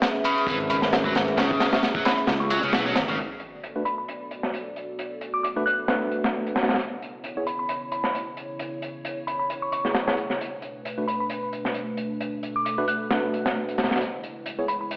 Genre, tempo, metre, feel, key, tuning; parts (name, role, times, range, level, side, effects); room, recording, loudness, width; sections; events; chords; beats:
breakbeat, breaks; 133 BPM; 4/4; swing 56% on 16ths; B dorian; A4 = 442 Hz
dark analog pad; sustained chords; 0.0-15.0 s; B2 to E5; -32 LUFS; equal; chorus, vintage 12-bit sampler grit, sidechain pumping
crunchy breakbeat drum kit; drums; 0.0-15.0 s; hi-hat, kick drum, snare drum; -26 LUFS; equal; low-pass filter on kick, low-pass filter on hats, low-pass filter on snare, low-pass filter on room
electronic hi-hat; drums; 0.0-3.2 s; -40 LUFS; equal
glassy synth bell; melody; 0.2-14.9 s; B5 to F#6; -28 LUFS; equal; chorus, telephone sound, digital delay
biting overdriven guitar; riff; 0.2-3.2 s; C#3 to F#3; -27 LUFS; equal; vintage 12-bit sampler grit, digital delay
fuzz fingered electric bass; bass; 0.5-3.2 s; G#1 to C#2; -28 LUFS; equal; overdrive, tube saturation
sub drop; sound effects; 3.2-5.0 s; -52 LUFS; equal
tine electric piano; stabs; 3.8-14.7 s; A3 to C#5; -29 LUFS; equal; slow stereo tremolo, vintage 12-bit sampler grit, digital delay
moderate plate reverb, RT60 2.1 s; played on a big sound system in a bare room, stone room reverb, AM radio sound; -23 LUFS; side -28 dB against mid
0.0-3.2 A section; 3.2-15.0 B section
impact 3.2-5.0
0.0 C#m7; 3.2 Bm7; 6.8 C#m7; 10.4 Bm7; 14.0 C#m7
0.02 0.47 0.93 | 1.38 1.83 2.28 2.73 | 3.18 3.63 4.08 4.53 | 4.99 5.44 5.89 6.34 | 6.79 7.24 7.69 8.14 | 8.59 9.04 9.50 9.95 | 10.40 10.85 11.30 11.75 | 12.20 12.65 13.11 13.56 | 14.01 14.46 14.91